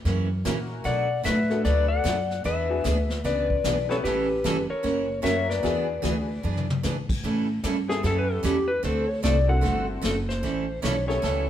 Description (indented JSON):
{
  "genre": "country, western swing",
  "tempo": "150 BPM",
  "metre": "4/4",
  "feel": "swing 64% on 8ths",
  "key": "A mixolydian",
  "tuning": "A4 = 440 Hz",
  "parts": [
    { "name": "picked steel-string acoustic guitar", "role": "accompaniment", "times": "0.1-11.5 s", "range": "B2 to A4", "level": "-30 LUFS", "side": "right 4 dB", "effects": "none" },
    { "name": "upright bass", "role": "bass", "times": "0.1-11.5 s", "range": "F#1 to B2", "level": "-27 LUFS", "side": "equal", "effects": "none" },
    { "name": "vintage brush drum kit", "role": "drums", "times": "0.1-11.5 s", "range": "brushed snare drum, crash cymbal, hi-hat, kick drum, snare drum, toms", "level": "-32 LUFS", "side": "left 2 dB", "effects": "none" },
    { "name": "honky-tonk upright piano", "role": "accompaniment", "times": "0.4-11.5 s", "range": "A3 to B4", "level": "-32 LUFS", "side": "left 4 dB", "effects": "none" },
    { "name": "clean lap steel guitar", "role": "melody", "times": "0.9-11.5 s", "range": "G4 to F#5", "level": "-26 LUFS", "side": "left 3 dB", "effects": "none" }
  ],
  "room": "moderate stone room reverb, RT60 1.3 s",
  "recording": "band playing live in one room",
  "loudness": "-22 LUFS",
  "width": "side -11 dB against mid",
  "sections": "0.0-7.2 A section; 7.2-11.5 B section",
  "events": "drum fill 6.4-6.8; electric slide guitar solo 7.2-11.5",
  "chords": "0.1 F#7; 0.8 Bm7; 2.4 E7; 4.0 A9; 4.8 F#7; 5.6 E9; 7.2 A9; 8.8 D9; 10.4 A9"
}